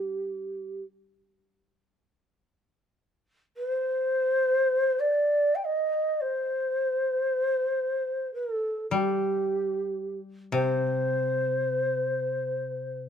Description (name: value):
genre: japanese traditional, Japanese chamber music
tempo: free time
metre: none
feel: none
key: C kumoi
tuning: A4 = 437 Hz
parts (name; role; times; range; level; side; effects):
- mellow hollow shakuhachi; melody; 0.0-0.8, 3.6-13.0 s; G4 to G5; -26 LUFS; equal; none
- koto; accompaniment; 0.0-0.8, 8.9-13.1 s; C3 to D4; -31 LUFS; left 4 dB; none
room: light reverb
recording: close, detailed microphones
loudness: -25 LUFS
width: side -8 dB against mid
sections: 0.0-13.1 A section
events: none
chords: none